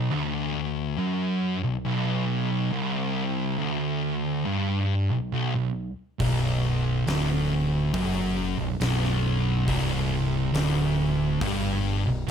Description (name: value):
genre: stoner and doom metal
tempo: 69 BPM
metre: 4/4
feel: straight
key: B minor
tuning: A4 = 439 Hz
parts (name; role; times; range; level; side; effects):
- thick fuzz guitar; riff; 0.0-12.3 s; B1 to G2; -27 LUFS; left 7 dB; distortion
- thick fuzz guitar; riff; 0.0-12.3 s; B1 to G2; -27 LUFS; right 6 dB; distortion
- growling fingered electric bass; bass; 6.2-12.3 s; B0 to G1; -32 LUFS; left 1 dB; overdrive
- oversized low-tuned drum kit; drums; 6.2-12.3 s; hi-hat, kick drum, snare drum; -33 LUFS; left 1 dB; none
room: light reverb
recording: none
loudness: -23 LUFS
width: side -7 dB against mid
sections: 0.0-12.3 A section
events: none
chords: 0.0 Bm